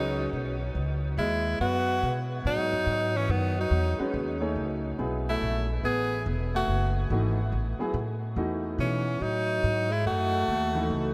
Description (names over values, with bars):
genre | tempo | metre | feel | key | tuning
modal jazz | 142 BPM | 4/4 | swing 66% on 8ths | unclear | A4 = 445 Hz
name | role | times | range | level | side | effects
edgy tenor saxophone | melody | 0.0-11.1 s | B3 to G#4 | -33 LUFS | equal | analog delay
clear alto saxophone | second line | 0.0-11.1 s | D#3 to B3 | -36 LUFS | equal | analog delay
clear baby grand piano | accompaniment | 0.0-0.6, 4.0-11.1 s | E3 to C#5 | -36 LUFS | equal | none
upright bass | bass | 0.0-11.1 s | E1 to B2 | -32 LUFS | equal | none
room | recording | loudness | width
moderate huge ambient reverb, RT60 8.0 s | dreamy mix soaked in reverb | -28 LUFS | mono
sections
0.0-11.1 A section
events
none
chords
0.0 C#9sus4; 5.0 B7sus4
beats
0.33 0.75 1.17 | 1.60 2.02 2.44 2.87 | 3.29 3.72 4.14 4.56 | 4.99 5.41 5.83 6.25 | 6.68 7.10 7.52 7.95 | 8.37 8.79 9.21 9.64 | 10.06 10.48 10.90